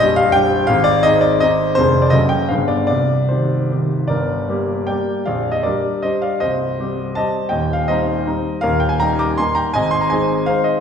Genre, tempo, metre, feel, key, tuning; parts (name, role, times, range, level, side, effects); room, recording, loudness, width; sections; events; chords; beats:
classical, romantic triple-time dance for piano with dotted rhythms; 138-181 BPM; 3/4; rubato; C minor, G minor from 4.1 s; A4 = 442 Hz
clear grand piano; solo; 0.0-10.8 s; Bb0 to D6; -15 LUFS; equal
wet recital hall reverb, RT60 1.5 s; heard from further back in the room; -15 LUFS; side -7 dB against mid
0.0-4.1 A section; 4.1-10.8 B section
0.0 Gm/Bb; 0.7 Ab; 1.8 Ddim/F; 2.1 F#dim7; 2.5 G7b9; 2.9 Cm; 4.1 Gm; 5.3 Gm/Bb; 6.4 Cm; 7.5 Cm/Eb; 8.6 Eb; 9.7 Ab
0.01 0.36 | 0.69 1.05 1.41 | 1.76 2.13 2.51 | 2.89 3.30 3.71 | 4.10 4.50 4.89 | 5.27 5.66 6.04 | 6.41 6.78 7.16 | 7.51 7.88 8.25 | 8.61 9.00 9.38 | 9.73 10.09 10.46